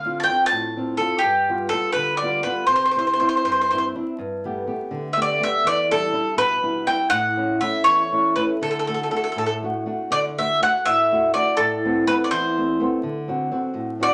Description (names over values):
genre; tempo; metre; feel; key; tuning
italian folk, Italian serenade; 82 BPM (dotted quarters); 6/8; rubato; C major, G major from 4.2 s; A4 = 440 Hz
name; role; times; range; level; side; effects
bowl-back mandolin; melody; 0.0-14.1 s; G4 to A5; -22 LUFS; equal; none
nylon-string guitar; accompaniment; 0.0-14.1 s; E2 to G4; -28 LUFS; equal; none
room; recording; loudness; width
wet studio reverb, RT60 0.7 s; vinyl crackle; -21 LUFS; mono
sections
0.0-4.2 A section; 4.2-14.1 B section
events
none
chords
0.0 Dm7; 1.2 G7; 2.7 Cadd9; 4.2 Gadd9; 5.6 Em7; 7.1 A; 8.6 D; 11.6 Amadd9; 13.0 D7